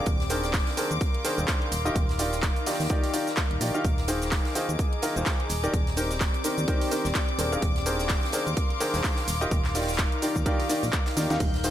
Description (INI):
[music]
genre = piano house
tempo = 127 BPM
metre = 4/4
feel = swing 57% on 16ths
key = Eb major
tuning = A4 = 440 Hz
[part]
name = bright chamber violin section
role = sustained chords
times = 0.0-11.7 s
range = D6 to G6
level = -35 LUFS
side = left 3 dB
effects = sidechain pumping
[part]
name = bright grand piano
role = riff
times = 0.0-11.7 s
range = Eb3 to F5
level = -30 LUFS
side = equal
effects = sidechain pumping, digital delay
[part]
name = airy breathy pad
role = texture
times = 0.0-11.7 s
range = C4 to C6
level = -33 LUFS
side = left 2 dB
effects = chorus, sidechain pumping
[part]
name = solid FM bass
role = bass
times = 0.1-11.7 s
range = Eb1 to Eb2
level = -30 LUFS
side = equal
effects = sidechain pumping
[part]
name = electronic kick drum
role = drums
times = 0.1-11.5 s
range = none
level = -26 LUFS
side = equal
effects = overdrive
[part]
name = house drum kit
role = drums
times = 0.1-11.7 s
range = handclaps, hi-hat, ride cymbal, shaker, snare drum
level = -32 LUFS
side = equal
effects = overdrive
[part]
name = tight metal drum kit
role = drums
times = 0.1-11.7 s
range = hi-hat, snare drum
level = -41 LUFS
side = right 3 dB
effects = none
[part]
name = congas and tambourine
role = percussion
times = 11.4-11.7 s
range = none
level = -35 LUFS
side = right 4 dB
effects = none
[sound]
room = light reverb, small room reverb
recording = none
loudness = -24 LUFS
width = side -11 dB against mid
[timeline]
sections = 0.0-11.7 A section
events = drum fill 11.2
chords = 0.0 Bb9/Eb; 1.7 Ebmaj9; 3.8 Ab6/Eb; 5.5 Cm7/Eb; 7.4 Bb9/Eb; 9.3 Ebmaj9